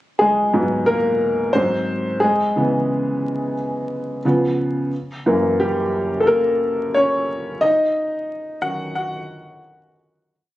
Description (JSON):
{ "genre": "R&B", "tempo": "89 BPM", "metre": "4/4", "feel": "swing 60% on 16ths", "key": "unclear", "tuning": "A4 = 440 Hz", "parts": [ { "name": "warm grand piano", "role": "solo", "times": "0.2-10.3 s", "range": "F#2 to F#5", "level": "-18 LUFS", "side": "equal", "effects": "none" } ], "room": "light reverb", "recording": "recorded on a phone in the room, studio ambience, vinyl crackle, compression", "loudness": "-18 LUFS", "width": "side -15 dB against mid", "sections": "0.0-10.3 verse", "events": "grand piano solo 0.0-10.3; fade-out 7.6-10.3", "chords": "0.0 G#m9; 1.5 G#7; 2.2 C#m7; 4.2 C#7; 4.9 F#7b9; 7.6 D#m7" }